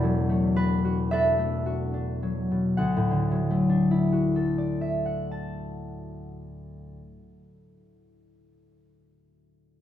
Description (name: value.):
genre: classical, solo harp piece.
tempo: 37 BPM (dotted quarters).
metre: 6/8.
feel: rubato.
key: D major.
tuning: A4 = 440 Hz.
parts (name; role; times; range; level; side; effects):
concert harp; solo; 0.0-7.4 s; E1 to A5; -24 LUFS; left 1 dB; none.
room: wet recital hall reverb, RT60 1.4 s.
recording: minimal, uncompressed stereo recording.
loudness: -23 LUFS.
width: side -11 dB against mid.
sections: 0.0-2.7 A section; 2.7-5.9 B section.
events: slowing down 0.0-2.7.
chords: 0.0 E9sus4; 2.7 Dadd9.